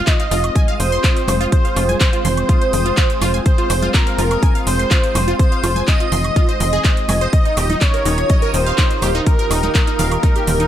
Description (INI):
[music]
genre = progressive house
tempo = 124 BPM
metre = 4/4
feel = straight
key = F minor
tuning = A4 = 440 Hz
[part]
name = wide unison lead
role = melody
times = 0.0-10.7 s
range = Bb4 to Eb5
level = -22 LUFS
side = right 1 dB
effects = sidechain pumping, digital delay
[part]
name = airy dreamy lead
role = second line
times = 0.0-10.7 s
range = Bb4 to Eb5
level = -26 LUFS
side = equal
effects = chorus, sidechain pumping, tape echo
[part]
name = lush unison pad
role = sustained chords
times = 0.0-10.7 s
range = Eb3 to Bb4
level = -26 LUFS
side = left 1 dB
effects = chorus, sidechain pumping
[part]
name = tight sequencer bass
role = bass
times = 0.0-10.7 s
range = Eb1 to F1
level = -19 LUFS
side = equal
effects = sidechain pumping
[part]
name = backwards swelling texture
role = texture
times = 0.3-10.7 s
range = Eb6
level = -31 LUFS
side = right 2 dB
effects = built-in reverb, sidechain pumping
[part]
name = electronic kick drum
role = drums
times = 0.1-10.3 s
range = none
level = -15 LUFS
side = equal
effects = none
[part]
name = house drum kit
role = drums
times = 0.1-10.7 s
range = handclaps, hi-hat, shaker, woodblock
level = -23 LUFS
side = right 1 dB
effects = none
[part]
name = wide unison pluck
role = arpeggios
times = 0.2-10.6 s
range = Eb4 to C6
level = -24 LUFS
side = right 1 dB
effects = phaser, cassette tape, sidechain pumping, tape echo
[part]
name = congas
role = percussion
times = 0.6-10.6 s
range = none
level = -28 LUFS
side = right 2 dB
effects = sidechain pumping on perc
[sound]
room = little or no reverb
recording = none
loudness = -14 LUFS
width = side -11 dB against mid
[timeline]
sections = 0.0-10.7 A section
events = none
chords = 0.0 Fm; 7.3 Ebadd9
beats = 0.07 0.56 1.04 | 1.52 2.01 2.49 2.97 | 3.46 3.94 4.43 4.91 | 5.39 5.88 6.36 6.84 | 7.33 7.81 8.30 8.78 | 9.27 9.75 10.23